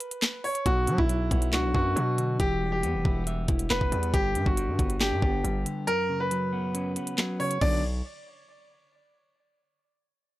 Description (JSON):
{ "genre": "hip hop, drill", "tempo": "138 BPM", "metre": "4/4", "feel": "half-time", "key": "B minor", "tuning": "A4 = 440 Hz", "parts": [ { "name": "clear concert grand piano", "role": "melody", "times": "0.0-7.8 s", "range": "E4 to D5", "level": "-29 LUFS", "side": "equal", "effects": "none" }, { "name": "drill drum kit", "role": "drums", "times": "0.0-7.7 s", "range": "crash cymbal, handclaps, hi-hat, kick drum, snare drum", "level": "-28 LUFS", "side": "equal", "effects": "none" }, { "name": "semi-hollow electric guitar", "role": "accompaniment", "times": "0.7-7.8 s", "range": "F#2 to E5", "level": "-32 LUFS", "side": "equal", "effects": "none" }, { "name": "distorted 808-style bass", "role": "bass", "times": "0.7-8.0 s", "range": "E1 to F#3", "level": "-29 LUFS", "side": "equal", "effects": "distortion" } ], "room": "little or no reverb", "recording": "dry, gritty hardware recording", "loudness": "-24 LUFS", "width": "side -16 dB against mid", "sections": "0.0-7.6 A section; 7.6-9.4 B section", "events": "break 0.0-0.7; kick muted 5.9-7.6", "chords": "0.0 N.C.; 0.7 Bm; 2.4 Em; 4.1 G; 5.9 F#sus4; 7.6 Bm", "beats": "0.22 | 0.66 1.09 1.53 1.96 | 2.40 2.83 3.27 3.70 | 4.14 4.57 5.01 5.44 | 5.88 6.31 6.75 7.18 | 7.62" }